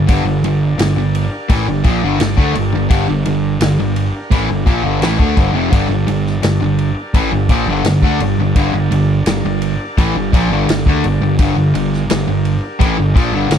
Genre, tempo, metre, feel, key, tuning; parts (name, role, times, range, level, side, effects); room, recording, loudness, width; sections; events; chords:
classic rock; 85 BPM; 4/4; straight; G minor; A4 = 441 Hz
overdriven tonewheel organ; sustained chords; 0.0-13.6 s; D4 to Eb5; -29 LUFS; equal; slow rotary speaker
overdriven semi-hollow guitar; riff; 0.0-13.6 s; F2 to A3; -19 LUFS; left 12 dB
sludgy distorted guitar; riff; 0.0-13.6 s; F2 to A3; -18 LUFS; right 10 dB; overdrive
fuzz picked electric bass; bass; 0.0-13.6 s; F1 to D2; -19 LUFS; left 1 dB; overdrive, tube saturation
vintage drum kit; drums; 0.1-13.6 s; kick drum, ride cymbal, snare drum; -18 LUFS; equal
little or no reverb; dry, close 1970s-style studio recording; -12 LUFS; side -8 dB against mid
0.0-13.6 A section
0.0 Gm